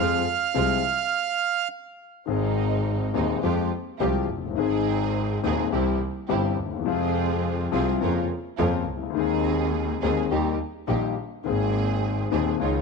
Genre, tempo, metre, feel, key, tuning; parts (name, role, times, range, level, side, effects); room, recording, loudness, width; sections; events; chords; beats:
tango; 105 BPM; 4/4; rubato; Ab major; A4 = 440 Hz
bandoneon; melody; 0.0-1.7 s; F5; -24 LUFS; right 9 dB
warm concert grand piano; accompaniment; 0.0-12.8 s; Eb1 to Ab4; -26 LUFS; left 12 dB
rich studio string section; stabs; 0.0-12.8 s; Ab3 to Bb4; -31 LUFS; right 12 dB
clear double bass; bass; 0.0-12.8 s; Gb1 to F2; -28 LUFS; right 3 dB
light reverb, small room ambience; 1960s-style stereo with parts hard left and right; -22 LUFS; side -4 dB against mid
0.0-2.3 A section; 2.3-12.8 B section
stop 1.1-2.3
0.0 Fm; 2.3 Ab; 3.4 Fmadd9; 4.6 Ab; 5.7 C; 6.9 Fm; 8.0 Bbm/F; 9.2 Ab/Eb; 10.3 Eb; 11.4 Abadd9
0.56 1.13 1.71 | 2.29 2.86 3.44 4.01 | 4.58 5.16 5.73 6.30 | 6.87 7.44 8.01 8.59 | 9.16 9.73 10.30 10.87 | 11.45 12.02 12.60